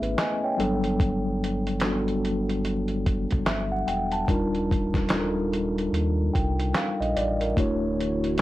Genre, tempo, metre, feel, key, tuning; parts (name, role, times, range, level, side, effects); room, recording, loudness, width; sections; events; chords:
lo-fi hip hop; 73 BPM; 4/4; swing 61% on 16ths; A4 = 440 Hz
mellow tine electric piano; accompaniment; 0.0-8.4 s; F#3 to A5; -25 LUFS; equal; medium stereo tremolo, plate reverb
sub bass with octave; bass; 0.0-8.4 s; D1 to Eb2; -30 LUFS; equal
dusty soul sampler-style drum kit; drums; 0.0-8.4 s; handclaps, hi-hat, kick drum, snare drum; -27 LUFS; equal; vintage 12-bit sampler grit
dark analog pad; sustained chords; 7.8-8.4 s; D3 to C#5; -32 LUFS; equal; chorus
moderate studio reverb, RT60 0.6 s; vinyl crackle; -23 LUFS; side -16 dB against mid
0.0-8.4 A section
tine electric piano fill 0.0-1.0
0.0 Amaj9; 0.6 Gmaj9; 4.3 Ebmaj9; 7.6 Dmaj9